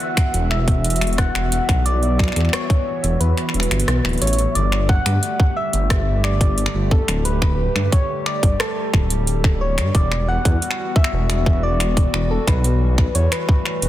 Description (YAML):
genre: IDM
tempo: 89 BPM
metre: 4/4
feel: straight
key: G lydian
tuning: A4 = 440 Hz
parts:
  - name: soft struck synth lead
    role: melody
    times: 0.0-13.9 s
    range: A4 to F#5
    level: -24 LUFS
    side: equal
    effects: chorus, dub echo
  - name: warbly tape-like pad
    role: sustained chords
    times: 0.0-13.9 s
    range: D3 to G4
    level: -28 LUFS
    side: left 1 dB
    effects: chorus, built-in reverb, sidechain pumping
  - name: booming analog drum machine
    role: drums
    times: 0.0-13.9 s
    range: finger snaps, hi-hat, rim click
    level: -25 LUFS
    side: equal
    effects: soft clipping on snare
  - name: flickering grainy texture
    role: texture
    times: 0.0-4.6 s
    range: E5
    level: -36 LUFS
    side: right 3 dB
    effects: none
  - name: electronic kick drum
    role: drums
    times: 0.2-13.6 s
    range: none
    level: -18 LUFS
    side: equal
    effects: none
  - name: dark detuned saw bass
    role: bass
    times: 0.3-13.9 s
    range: D1 to G2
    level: -19 LUFS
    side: equal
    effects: tube saturation
room: light reverb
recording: dense, heavily limited modern master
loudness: -16 LUFS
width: side -13 dB against mid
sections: 0.0-4.6 A section; 4.6-13.9 B section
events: kick drops out 3.2-4.6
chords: 0.0 Emadd9; 4.6 Gsus2; 9.9 Emadd9